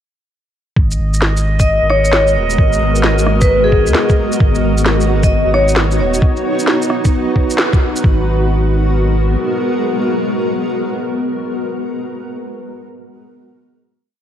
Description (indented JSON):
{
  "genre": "future garage",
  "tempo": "132 BPM",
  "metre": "4/4",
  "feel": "swing 65% on 16ths",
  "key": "G# minor",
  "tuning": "A4 = 441 Hz",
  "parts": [
    { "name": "granular cloud pad", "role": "sustained chords", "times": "1.8-11.0 s", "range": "G#3 to C#5", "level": "-18 LUFS", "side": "equal", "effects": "built-in reverb, sidechain pumping" },
    { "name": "warm sub bass", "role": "bass", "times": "0.8-9.4 s", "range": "D#1 to D#2", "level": "-16 LUFS", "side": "equal", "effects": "sidechain pumping" },
    { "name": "electronic kick drum", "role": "drums", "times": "0.8-8.2 s", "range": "none", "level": "-13 LUFS", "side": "equal", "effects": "none" },
    { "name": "drifting glass-harmonics texture", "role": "texture", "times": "1.0-6.2 s", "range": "D#5", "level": "-24 LUFS", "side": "right 3 dB", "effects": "chorus, built-in reverb" },
    { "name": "electronic shaker, snare drum and rim click", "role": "drums", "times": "0.9-8.0 s", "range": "none", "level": "-18 LUFS", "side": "equal", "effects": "none" },
    { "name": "vibraphone with medium hard mallets", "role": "melody", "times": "1.6-5.7 s", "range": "G#4 to D#5", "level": "-17 LUFS", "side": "left 2 dB", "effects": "tape echo" }
  ],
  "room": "light reverb, digital ambience",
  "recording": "cassette tape",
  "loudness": "-12 LUFS",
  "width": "side -10 dB against mid",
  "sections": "0.8-8.0 groove; 8.0-11.7 final chord",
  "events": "band accent 7.6",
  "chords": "0.8 G#m9; 4.4 Badd9; 8.0 G#m9"
}